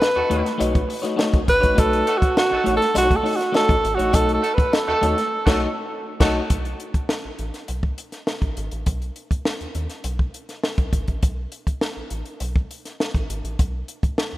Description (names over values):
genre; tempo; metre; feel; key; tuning
funk; 102 BPM; 4/4; straight; B mixolydian; A4 = 441 Hz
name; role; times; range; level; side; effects
breathy tenor saxophone; melody; 0.0-6.2 s; F#4 to B4; -20 LUFS; right 1 dB; none
compact cocktail drum kit; drums; 0.0-14.3 s; crash cymbal, hi-hat, kick drum, snare drum; -22 LUFS; equal; none
cowbell; percussion; 0.0-4.9 s; none; -34 LUFS; left 2 dB; none
clear horn section; second line; 0.2-6.4 s; A3 to A4; -30 LUFS; right 2 dB; none
electric guitar at the edge of break-up; accompaniment; 0.2-6.4 s; A3 to C#5; -25 LUFS; left 2 dB; none
metallic FM bass; bass; 0.2-14.4 s; G#1 to D#2; -28 LUFS; equal; none
room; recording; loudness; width
moderate lush hall reverb, RT60 2.8 s; rough home demo mix; -19 LUFS; side -16 dB against mid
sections
0.0-6.5 A section; 6.5-14.4 B section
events
tenor saxophone solo 0.0-6.5; band accent 5.3-6.5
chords
0.0 B9; 6.5 B7(no3)